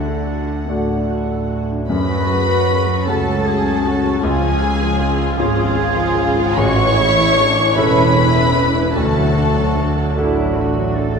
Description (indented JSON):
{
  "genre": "cinematic",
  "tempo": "50 BPM (dotted quarters)",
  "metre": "6/8",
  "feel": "rubato",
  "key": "F# minor",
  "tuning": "A4 = 438 Hz",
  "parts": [
    { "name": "dark studio violin section", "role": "melody", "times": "0.0-10.1 s", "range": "E#5 to C#6", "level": "-22 LUFS", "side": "left 2 dB", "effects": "none" },
    { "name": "clear clarinet", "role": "second line", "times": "0.0-1.5 s", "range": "D4", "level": "-29 LUFS", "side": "equal", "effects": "none" },
    { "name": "bright concert grand piano", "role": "accompaniment", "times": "0.0-11.2 s", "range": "A1 to A4", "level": "-20 LUFS", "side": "left 1 dB", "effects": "none" },
    { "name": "dark symphonic viola section", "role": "accompaniment", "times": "0.0-11.2 s", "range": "C#3 to C#5", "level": "-23 LUFS", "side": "right 1 dB", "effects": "none" },
    { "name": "warm symphonic cello section", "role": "bass", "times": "0.0-11.2 s", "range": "A2 to A4", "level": "-24 LUFS", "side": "right 2 dB", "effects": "none" },
    { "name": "warm studio violin section", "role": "second line", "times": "1.9-10.2 s", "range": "E#4 to C#5", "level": "-22 LUFS", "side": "left 2 dB", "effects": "none" },
    { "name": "rich symphonic double bass section", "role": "bass", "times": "1.9-11.2 s", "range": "E1 to F#2", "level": "-20 LUFS", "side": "right 2 dB", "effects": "none" }
  ],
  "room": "wet scoring stage reverb, RT60 1.8 s",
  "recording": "heard from further back in the room",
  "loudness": "-14 LUFS",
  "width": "side -5 dB against mid",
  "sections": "0.0-1.9 A section; 1.9-11.2 A section",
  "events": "none",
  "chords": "0.0 D; 1.9 F#m; 4.2 C#; 6.6 A; 9.0 D",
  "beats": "0.68 | 1.89 3.07 | 4.23 5.38 | 6.58 7.77 | 8.96 10.17"
}